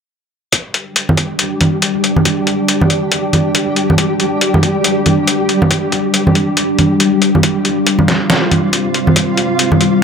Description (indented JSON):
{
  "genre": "deep dubstep",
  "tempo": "139 BPM",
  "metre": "4/4",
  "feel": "swing 59% on 16ths, half-time",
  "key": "unclear",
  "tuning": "A4 = 438 Hz",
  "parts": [
    { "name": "deep dark ambient pad", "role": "sustained chords", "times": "1.2-10.0 s", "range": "G3 to D4", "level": "-16 LUFS", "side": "left 1 dB", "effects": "chorus, built-in reverb" },
    { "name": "electronic kick drum", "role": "drums", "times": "0.5-9.3 s", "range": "none", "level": "-25 LUFS", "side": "right 1 dB", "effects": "high-pass filter on kick" },
    { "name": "trip hop sampler-style drum kit", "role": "drums", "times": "0.5-9.9 s", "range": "hi-hat, snare drum", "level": "-15 LUFS", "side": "left 2 dB", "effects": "none" },
    { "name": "flickering grainy texture", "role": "texture", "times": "1.0-10.0 s", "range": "G3 to G4", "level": "-19 LUFS", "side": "right 1 dB", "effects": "built-in reverb" },
    { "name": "congas", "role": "percussion", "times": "1.1-9.8 s", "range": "none", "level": "-15 LUFS", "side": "right 1 dB", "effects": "dub echo" }
  ],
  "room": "light reverb",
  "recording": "none",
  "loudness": "-11 LUFS",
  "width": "side -6 dB against mid",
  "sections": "0.5-10.0 A section",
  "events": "none",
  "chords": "0.5 G5",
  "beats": "| 0.53 0.96 1.39 1.82 | 2.25 2.69 3.12 3.55 | 3.98 4.41 4.84 5.28 | 5.71 6.14 6.57 7.00 | 7.43 7.87 8.30 8.73 | 9.16 9.59 10.02"
}